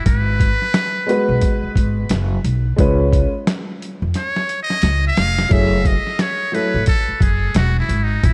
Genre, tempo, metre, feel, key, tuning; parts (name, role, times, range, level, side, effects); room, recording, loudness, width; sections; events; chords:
hip hop, jazz-hop; 88 BPM; 4/4; swing 62% on 16ths; A4 = 441 Hz
trumpet with metal mute; melody; 0.0-8.3 s; D#4 to E#5; -24 LUFS; equal; diffuse ambient delay
upright bass; bass; 0.1-8.3 s; E1 to E#2; -21 LUFS; equal
boom bap sampler-style drum kit; drums; 0.1-8.3 s; hi-hat, kick drum, snare drum; -22 LUFS; equal
dark baby grand piano; accompaniment; 1.1-6.8 s; F#3 to B4; -23 LUFS; equal
light reverb, studio reverb; cassette tape; -18 LUFS; mono
0.0-8.3 A section
muted trumpet solo 0.0-8.3; drum fill 4.1-5.5
0.1 G#m7; 2.8 C#7; 5.5 F#m9